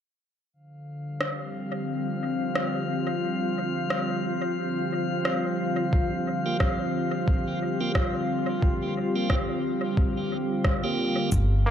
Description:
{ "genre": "ambient dub", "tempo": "89 BPM", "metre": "4/4", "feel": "swing 58% on 16ths", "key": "unclear", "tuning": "A4 = 440 Hz", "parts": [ { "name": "warbly tape-like pad", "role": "sustained chords", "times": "0.8-11.7 s", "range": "D3 to G4", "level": "-28 LUFS", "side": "left 1 dB", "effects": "chorus, built-in reverb" }, { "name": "drifting glass-harmonics texture", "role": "texture", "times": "1.2-11.3 s", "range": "F3 to F5", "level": "-32 LUFS", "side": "equal", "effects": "chorus, built-in reverb" }, { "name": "electronic rim click and cabasa", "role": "drums", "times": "1.2-11.5 s", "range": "none", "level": "-32 LUFS", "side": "equal", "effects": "dub echo" }, { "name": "electronic kick drum", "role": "drums", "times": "5.9-11.5 s", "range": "none", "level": "-25 LUFS", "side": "equal", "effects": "none" }, { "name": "tonewheel organ", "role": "stabs", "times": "6.5-11.3 s", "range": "Bb3 to G4", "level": "-33 LUFS", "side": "right 3 dB", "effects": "overdrive, stopped rotary speaker, dub echo" }, { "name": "upright bass", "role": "bass", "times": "11.3-11.7 s", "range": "G1", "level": "-21 LUFS", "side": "equal", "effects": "none" }, { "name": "brilliant trombone", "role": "melody", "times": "11.7 s", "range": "Bb3", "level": "-24 LUFS", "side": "equal", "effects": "vintage 12-bit sampler grit" } ], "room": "light reverb", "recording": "dark, warm production", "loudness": "-24 LUFS", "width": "side -9 dB against mid", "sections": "0.5-11.3 A section", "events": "none", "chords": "0.5 Gm7", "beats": "| 0.54 1.21 1.88 2.56 | 3.23 3.91 4.58 5.25 | 5.93 6.60 7.28 7.95 | 8.62 9.30 9.97 10.65 | 11.32" }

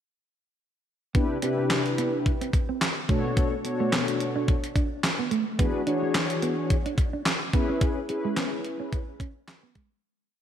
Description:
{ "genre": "early-eighties boogie funk", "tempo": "108 BPM", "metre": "4/4", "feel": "swing 56% on 16ths", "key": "unclear", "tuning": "A4 = 438 Hz", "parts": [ { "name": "mellow synth brass", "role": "accompaniment", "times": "1.1-9.0 s", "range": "B2 to C#5", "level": "-28 LUFS", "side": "left 2 dB", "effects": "chorus" }, { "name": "crisp 8-bit digital drum machine", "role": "drums", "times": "1.1-9.9 s", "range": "handclaps, hi-hat, kick drum, snare drum", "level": "-26 LUFS", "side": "equal", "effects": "none" }, { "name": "mellow electric guitar", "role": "riff", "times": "1.2-9.9 s", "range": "G#3 to D4", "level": "-32 LUFS", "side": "right 5 dB", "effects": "wide subtle chorus, slapback echo" } ], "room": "moderate lush hall reverb, RT60 1.9 s", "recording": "big arena sound", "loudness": "-24 LUFS", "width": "side -9 dB against mid", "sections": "1.1-10.0 breakdown", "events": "fade-out 7.8-10.0", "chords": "1.1 Cmaj7; 3.1 Bm7; 5.6 E7; 7.5 C#m7", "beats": "| 1.15 1.70 2.26 2.81 | 3.37 3.92 4.48 5.04 | 5.59 6.15 6.70 7.26 | 7.81 8.37 8.93 9.48" }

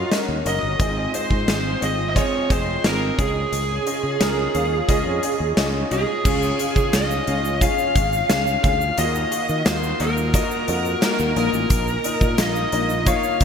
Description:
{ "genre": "1980s-style pop", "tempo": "88 BPM", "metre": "4/4", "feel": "straight", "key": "unclear", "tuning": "A4 = 440 Hz", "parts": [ { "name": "bluesy overdriven lead guitar", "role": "melody", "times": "0.0-13.4 s", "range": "Ab4 to F5", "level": "-23 LUFS", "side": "right 1 dB", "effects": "distortion, shimmer reverb" }, { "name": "warm concert grand piano", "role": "accompaniment", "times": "0.0-13.4 s", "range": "Ab2 to F5", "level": "-25 LUFS", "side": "left 2 dB", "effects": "analog chorus, shimmer reverb" }, { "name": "sustaining fretless electric bass", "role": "bass", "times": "0.0-13.4 s", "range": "F1 to Eb3", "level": "-26 LUFS", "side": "equal", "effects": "none" }, { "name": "huge arena drum kit", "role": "drums", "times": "0.1-13.4 s", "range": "crash cymbal, hi-hat, kick drum, snare drum", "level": "-23 LUFS", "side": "equal", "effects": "none" }, { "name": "egg shaker", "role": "percussion", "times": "6.3-13.4 s", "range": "none", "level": "-35 LUFS", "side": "right 13 dB", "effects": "none" } ], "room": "moderate plate reverb, RT60 2.6 s", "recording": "bright 1980s-style digital production", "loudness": "-18 LUFS", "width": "side -7 dB against mid", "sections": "0.0-6.3 A section; 6.3-13.4 B section", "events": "none", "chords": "0.0 Ebm7; 0.8 Ab6; 3.2 Dbadd9; 6.3 Db; 9.0 Ebmadd9; 11.4 Bbsus4", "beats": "0.12 | 0.80 1.48 2.16 2.84 | 3.52 4.21 4.89 5.57 | 6.25 6.93 7.62 8.30 | 8.98 9.66 10.34 11.02 | 11.71 12.39 13.07" }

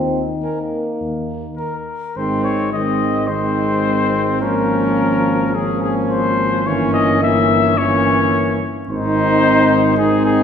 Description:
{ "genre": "classical, brass quintet", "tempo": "107 BPM", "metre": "4/4", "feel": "rubato", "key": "Ab major", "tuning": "A4 = 440 Hz", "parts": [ { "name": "mellow French horn", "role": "accompaniment", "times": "0.0-10.4 s", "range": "Ab3 to Eb4", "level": "-22 LUFS", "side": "left 3 dB", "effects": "none" }, { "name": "warm trombone", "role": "accompaniment", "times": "0.0-10.4 s", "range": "Eb3 to C4", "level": "-22 LUFS", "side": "right 1 dB", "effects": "none" }, { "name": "dark tuba", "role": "bass", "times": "0.0-10.4 s", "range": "G1 to Eb2", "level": "-22 LUFS", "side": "right 1 dB", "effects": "none" }, { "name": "mellow trumpet", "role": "melody", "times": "0.4-10.4 s", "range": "Ab4 to Ab5", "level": "-19 LUFS", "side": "left 5 dB", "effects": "none" }, { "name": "clear flugelhorn", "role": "second line", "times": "0.4-10.4 s", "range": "C4 to Bb4", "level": "-21 LUFS", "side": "right 3 dB", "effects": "none" } ], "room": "wet scoring stage reverb, RT60 1.9 s", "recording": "heard from further back in the room", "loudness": "-14 LUFS", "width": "side -7 dB against mid", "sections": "0.0-2.2 A section; 2.2-10.4 B section", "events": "none", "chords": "0.0 Eb5; 2.2 Ab; 4.4 Bbm7/Ab; 6.7 Gdim7; 8.9 Ab", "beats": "0.43 1.01 1.59 | 2.17 2.74 3.30 3.86 | 4.42 4.99 5.55 6.11 | 6.66 7.22 7.78 8.33 | 8.88 9.43 9.97" }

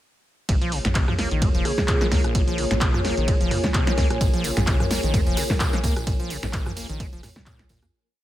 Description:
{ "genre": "acid house", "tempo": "129 BPM", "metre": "4/4", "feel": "swing 55% on 16ths", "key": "Bb minor", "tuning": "A4 = 437 Hz", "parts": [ { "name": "dark analog pad", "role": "sustained chords", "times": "0.5-7.9 s", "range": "Bb3 to Db5", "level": "-31 LUFS", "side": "left 2 dB", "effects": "wide subtle chorus, sidechain pumping" }, { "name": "acid bass, saw", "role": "riff", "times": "0.5-7.9 s", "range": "Bb1 to Bb3", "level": "-29 LUFS", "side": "equal", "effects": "tube saturation, wide subtle chorus, sidechain pumping, tape echo" }, { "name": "round analog bass", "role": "bass", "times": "0.5-7.9 s", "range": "F1 to F2", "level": "-28 LUFS", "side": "equal", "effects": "sidechain pumping" }, { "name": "electronic kick drum", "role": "drums", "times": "0.5-7.8 s", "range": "none", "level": "-23 LUFS", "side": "equal", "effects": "none" }, { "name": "punchy analog drum machine", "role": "drums", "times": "0.5-7.9 s", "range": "finger snaps, handclaps, hi-hat, ride cymbal, rim click, snare drum, toms", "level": "-27 LUFS", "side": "equal", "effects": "none" }, { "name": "granular cloud pad", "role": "texture", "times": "1.2-7.9 s", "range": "F4 to Ab5", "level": "-32 LUFS", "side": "left 1 dB", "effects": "built-in reverb, sidechain pumping" }, { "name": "vibraphone with medium hard mallets", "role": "melody", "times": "1.7-2.0 s", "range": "Ab4", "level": "-30 LUFS", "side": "right 2 dB", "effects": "ping-pong delay" }, { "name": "tambourine", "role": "percussion", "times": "4.2-7.9 s", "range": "none", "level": "-36 LUFS", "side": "right 4 dB", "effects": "none" } ], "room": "light reverb, digital ambience", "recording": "none", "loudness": "-20 LUFS", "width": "side -14 dB against mid", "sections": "0.5-7.9 drop", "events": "drop 0.5-7.9; fade-out 5.4-7.9", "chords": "0.5 Bbm7", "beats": "| 0.49 0.95 1.42 1.88 | 2.35 2.81 3.28 3.74 | 4.21 4.67 5.14 5.60 | 6.07 6.53 7.00 7.46" }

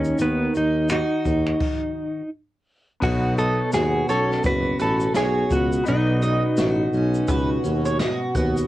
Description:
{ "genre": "acoustic pop", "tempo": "85 BPM", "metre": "4/4", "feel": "swing 60% on 16ths", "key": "unclear", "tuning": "A4 = 440 Hz", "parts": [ { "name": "clean electric guitar", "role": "melody", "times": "0.0-8.0 s", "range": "B3 to B4", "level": "-23 LUFS", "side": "equal", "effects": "tremolo" }, { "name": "picked steel-string acoustic guitar", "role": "accompaniment", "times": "0.0-8.7 s", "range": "B2 to F#4", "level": "-26 LUFS", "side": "equal", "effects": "double-tracked left and right, cassette tape" }, { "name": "mellow tuba", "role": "bass", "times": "0.0-8.6 s", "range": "F#1 to D#2", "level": "-24 LUFS", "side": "equal", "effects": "tube saturation" }, { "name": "jazz brush drum kit", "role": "drums", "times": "0.0-8.7 s", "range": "crash cymbal, finger snaps, kick drum, shaker, snare drum", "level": "-28 LUFS", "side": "equal", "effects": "cassette tape" }, { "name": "bright concert grand piano", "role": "accompaniment", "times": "3.0-8.7 s", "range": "B3 to D#5", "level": "-36 LUFS", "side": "left 3 dB", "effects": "cassette tape" }, { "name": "mandolin", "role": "arpeggios", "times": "3.4-8.5 s", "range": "B4 to F#5", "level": "-29 LUFS", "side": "right 2 dB", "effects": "cassette tape" } ], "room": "moderate booth ambience, RT60 0.2 s", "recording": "home recording on cassette", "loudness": "-19 LUFS", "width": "side -15 dB against mid", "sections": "0.0-3.0 A section; 3.0-8.7 B section", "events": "stop 1.6-3.0", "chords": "0.0 D#m; 3.0 Badd9", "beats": "| 0.19 0.90 1.61 2.32 | 3.03 3.74 4.45 5.16 | 5.86 6.57 7.28 7.99" }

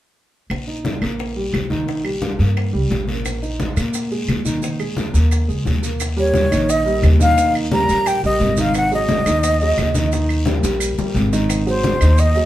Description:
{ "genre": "Afro-Cuban jazz", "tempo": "175 BPM", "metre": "4/4", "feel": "straight", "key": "Eb mixolydian", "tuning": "A4 = 441 Hz", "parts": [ { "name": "upright bass", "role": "bass", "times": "0.5-12.5 s", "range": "Ab1 to Bb2", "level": "-19 LUFS", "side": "equal", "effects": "none" }, { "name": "bongos", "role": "percussion", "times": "0.5-12.4 s", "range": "none", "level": "-31 LUFS", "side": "left 4 dB", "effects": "none" }, { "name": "claves", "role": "percussion", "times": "0.5-12.2 s", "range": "none", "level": "-32 LUFS", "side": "right 4 dB", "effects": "none" }, { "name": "congas", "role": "percussion", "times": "0.5-12.5 s", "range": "none", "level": "-26 LUFS", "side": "left 1 dB", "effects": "none" }, { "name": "guiro", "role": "percussion", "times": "0.5-12.5 s", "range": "none", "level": "-33 LUFS", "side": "left 2 dB", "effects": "none" }, { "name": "warm concert grand piano", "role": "accompaniment", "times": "0.7-12.5 s", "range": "Eb3 to Eb5", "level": "-23 LUFS", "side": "right 1 dB", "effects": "none" }, { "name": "maracas", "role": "percussion", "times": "3.3-12.5 s", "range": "none", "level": "-32 LUFS", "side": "right 6 dB", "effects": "none" }, { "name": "breathy mellow silver concert flute", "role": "melody", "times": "6.2-12.5 s", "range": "C5 to Bb5", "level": "-18 LUFS", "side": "equal", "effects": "slapback echo" } ], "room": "moderate studio reverb, RT60 0.7 s", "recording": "band playing live in one room", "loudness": "-16 LUFS", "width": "side -14 dB against mid", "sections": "0.5-6.0 A section; 6.0-12.5 B section", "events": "drum fill 10.6-11.5", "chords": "0.5 Eb/Bb; 3.3 Bb7sus4; 6.0 Eb; 8.8 Ab5; 10.1 Eb; 11.5 Ab7", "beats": "| 0.50 0.85 1.19 1.53 | 1.88 2.22 2.57 2.91 | 3.25 3.60 3.94 4.29 | 4.63 4.97 5.32 5.66 | 6.00 6.35 6.69 7.03 | 7.38 7.72 8.06 8.41 | 8.75 9.09 9.44 9.78 | 10.12 10.47 10.81 11.15 | 11.49 11.84 12.18" }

